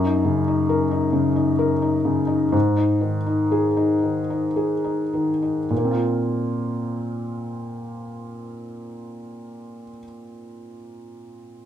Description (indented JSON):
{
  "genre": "classical",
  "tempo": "35-47 BPM (dotted quarters)",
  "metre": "6/8",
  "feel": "rubato",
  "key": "Bb minor",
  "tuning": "A4 = 441 Hz",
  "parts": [
    { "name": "felt-muted upright piano", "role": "accompaniment", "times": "0.0-11.7 s", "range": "Gb2 to Bb4", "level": "-21 LUFS", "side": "left 1 dB", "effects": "none" }
  ],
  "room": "moderate large studio reverb, RT60 1.2 s",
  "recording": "minimal, uncompressed stereo recording",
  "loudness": "-19 LUFS",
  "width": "side -10 dB against mid",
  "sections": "0.0-5.7 A section; 5.7-9.1 B section",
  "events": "slowing down 0.0-5.7",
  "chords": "0.0 Ebm7/Gb; 2.5 Ab5; 5.7 Bbsus2"
}